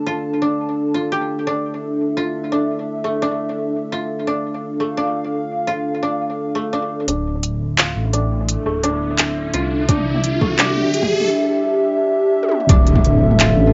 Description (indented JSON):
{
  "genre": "half-time drum and bass",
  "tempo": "171 BPM",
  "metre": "4/4",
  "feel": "half-time",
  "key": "D minor",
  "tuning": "A4 = 440 Hz",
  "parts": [
    { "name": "dark analog pad", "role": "sustained chords", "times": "0.0-13.7 s", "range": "D4 to A5", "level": "-23 LUFS", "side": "equal", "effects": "chorus, sidechain pumping, cassette tape" },
    { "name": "koto", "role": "arpeggios", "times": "0.0-13.7 s", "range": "A3 to G4", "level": "-26 LUFS", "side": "equal", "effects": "low-pass filter, cassette tape, analog delay" },
    { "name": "dark detuned saw bass", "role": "bass", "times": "7.1-13.7 s", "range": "D1 to C2", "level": "-22 LUFS", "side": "equal", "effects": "none" },
    { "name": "industrial drum kit", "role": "drums", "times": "7.1-13.7 s", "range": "handclaps, hi-hat, toms", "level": "-22 LUFS", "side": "equal", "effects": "cassette tape" },
    { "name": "riser and impact", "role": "sound effects", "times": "8.7-13.7 s", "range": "none", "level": "-26 LUFS", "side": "equal", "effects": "none" },
    { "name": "electronic kick drum", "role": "drums", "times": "9.9-13.0 s", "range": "none", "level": "-18 LUFS", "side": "equal", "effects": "cassette tape" }
  ],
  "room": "moderate small room reverb, RT60 0.5 s",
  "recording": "home recording on cassette, high-pass filter, nothing above 7.7 kHz",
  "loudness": "-19 LUFS",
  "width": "mono",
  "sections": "0.0-7.1 A section; 7.1-12.7 B section; 12.7-13.7 C section",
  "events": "filter sweep on analog synth pad 0.0-7.1; build-up 7.1-12.7; filter sweep on koto 7.1-12.7; filter sweep 7.1-12.7; riser 8.7-11.3; drum fill 12.4; drop 12.7-13.7; impact 12.7-13.7",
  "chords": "0.0 Dm"
}